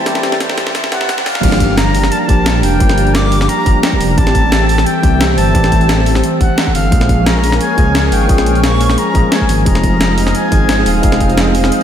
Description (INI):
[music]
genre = liquid drum and bass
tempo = 175 BPM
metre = 4/4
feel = straight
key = G dorian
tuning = A4 = 440 Hz
[part]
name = bright reedy silver concert flute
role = melody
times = 0.0-11.8 s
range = F5 to D6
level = -18 LUFS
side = left 1 dB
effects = tape echo
[part]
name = tine electric piano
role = accompaniment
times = 0.0-11.8 s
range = E3 to Ab4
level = -17 LUFS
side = equal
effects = diffuse ambient delay
[part]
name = lush unison pad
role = sustained chords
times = 0.0-11.8 s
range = Bb3 to A5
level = -20 LUFS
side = equal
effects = chorus, sidechain pumping
[part]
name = riser, swell and reverse cymbal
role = sound effects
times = 0.0-1.4, 11.8 s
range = none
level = -26 LUFS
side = left 2 dB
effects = none
[part]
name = breakbeat sampler-style drum kit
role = drums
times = 0.1-11.8 s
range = crash cymbal, hi-hat, snare drum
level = -18 LUFS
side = equal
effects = small room ambience
[part]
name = dark detuned saw bass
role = bass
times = 1.4-11.7 s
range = Eb1 to Db2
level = -15 LUFS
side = equal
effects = none
[part]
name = electronic kick drum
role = drums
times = 1.4-11.3 s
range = none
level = -13 LUFS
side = equal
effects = small room ambience
[sound]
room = moderate lush hall reverb, RT60 1.9 s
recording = dreamy mix soaked in reverb, high-pass filter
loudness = -10 LUFS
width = side -9 dB against mid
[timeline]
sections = 0.0-1.4 A section; 1.4-11.8 B section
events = build-up 0.0-1.4; drum fill 0.0-1.4; drop 1.4-11.8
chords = 0.0 Am7; 1.4 Gm7; 4.2 Am7; 6.9 Bbm7; 9.7 Fm7